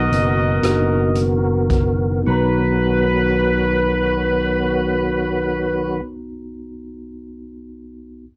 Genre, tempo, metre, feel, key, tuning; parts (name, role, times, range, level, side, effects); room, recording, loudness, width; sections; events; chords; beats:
slow gospel; 35-40 BPM (dotted quarters); 6/8; straight; B major; A4 = 440 Hz
clear horn section; melody; 0.0-6.0 s; F#4 to D#5; -23 LUFS; equal; cassette tape
mellow tine electric piano; accompaniment; 0.0-8.3 s; B1 to A#5; -26 LUFS; equal
percussive tonewheel organ; sustained chords; 0.0-6.0 s; D#3 to A#4; -25 LUFS; equal; slow rotary speaker, chorus vibrato
fingered electric bass; bass; 0.0-6.0 s; F#1 to B1; -24 LUFS; equal
swinging big-band drum kit; drums; 0.1-2.0 s; hi-hat, kick drum, rim click; -26 LUFS; equal; cassette tape
little or no reverb; home recording on cassette; -18 LUFS; mono
0.0-2.3 A section; 2.3-5.7 B section
slowing down 0.0-2.3
0.0 Bmaj7
0.63 | 2.27 4.00